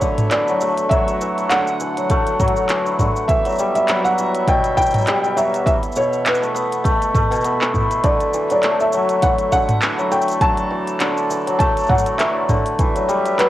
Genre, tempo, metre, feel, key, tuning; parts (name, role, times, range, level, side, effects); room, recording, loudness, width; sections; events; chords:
folktronica; 101 BPM; 4/4; swing 56% on 16ths; D major; A4 = 439 Hz
felt-muted upright piano; melody; 0.0-13.5 s; B4 to A5; -20 LUFS; equal; vintage 12-bit sampler grit, plate reverb
pedal harmonium; sustained chords; 0.0-13.5 s; E3 to F#5; -28 LUFS; right 5 dB; stereo widening, cassette tape, plate reverb
hammered dulcimer; arpeggios; 0.0-13.5 s; B2 to A4; -19 LUFS; left 1 dB; cassette tape, analog delay, plate reverb
electronic kick drum; drums; 0.0-12.9 s; -21 LUFS; equal; cassette tape
organic electronic drum kit; drums; 0.0-13.5 s; handclaps, hi-hat, shaker, toms; -23 LUFS; equal; cassette tape
moderate small room ambience, RT60 0.5 s; home recording on cassette; -15 LUFS; side -14 dB against mid
0.0-13.5 A section
0.0 Dadd9; 3.3 Emadd9; 5.7 Asus2; 8.0 Dadd9; 12.8 Emadd9